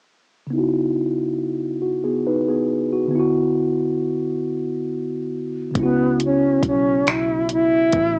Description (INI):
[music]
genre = slow six-eight R&B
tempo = 46 BPM (dotted quarters)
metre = 6/8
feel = straight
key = C# phrygian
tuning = A4 = 441 Hz
[part]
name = mellow tine electric piano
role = accompaniment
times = 0.5-8.2 s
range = C#3 to B4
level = -23 LUFS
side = equal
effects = low-pass filter
[part]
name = bright reedy long shakuhachi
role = melody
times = 5.8-8.2 s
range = B3 to E4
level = -20 LUFS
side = equal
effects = cassette tape
[part]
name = vintage muted fingered electric bass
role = bass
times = 5.8-8.2 s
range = A1 to C#2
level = -31 LUFS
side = equal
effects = transformer saturation
[part]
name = smooth R&B drum kit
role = drums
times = 5.8-8.1 s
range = finger snaps, hi-hat, kick drum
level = -25 LUFS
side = equal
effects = cassette tape
[sound]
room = moderate booth ambience, RT60 0.2 s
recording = home recording on cassette, small speaker sound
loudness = -21 LUFS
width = mono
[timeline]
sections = 0.5-5.7 A section; 5.7-8.2 B section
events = filter sweep on tine electric piano 0.5-5.7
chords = 0.5 C#m11; 3.1 D69; 5.7 C#m7